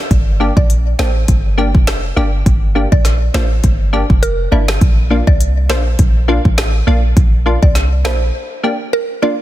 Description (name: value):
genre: dancehall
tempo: 102 BPM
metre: 4/4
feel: swing 56% on 16ths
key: G dorian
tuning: A4 = 440 Hz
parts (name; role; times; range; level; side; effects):
- clean 808-style bass; bass; 0.1-8.3 s; F1 to C2; -14 LUFS; equal; none
- afro-pop drum kit; drums; 0.1-8.2 s; hi-hat, kick drum, rim click, snare drum; -13 LUFS; equal; none
- wavetable chord stab; accompaniment; 0.4-9.4 s; Bb3 to G4; -20 LUFS; left 1 dB; none
- mallet-like synth pluck; melody; 0.6-9.4 s; Bb4 to D5; -22 LUFS; right 2 dB; chorus, phaser, ping-pong delay
room: digital ambience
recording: dense, heavily limited modern master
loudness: -11 LUFS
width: side -14 dB against mid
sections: 0.0-9.4 A section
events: break 8.3-9.4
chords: 0.1 Gm; 4.8 Bb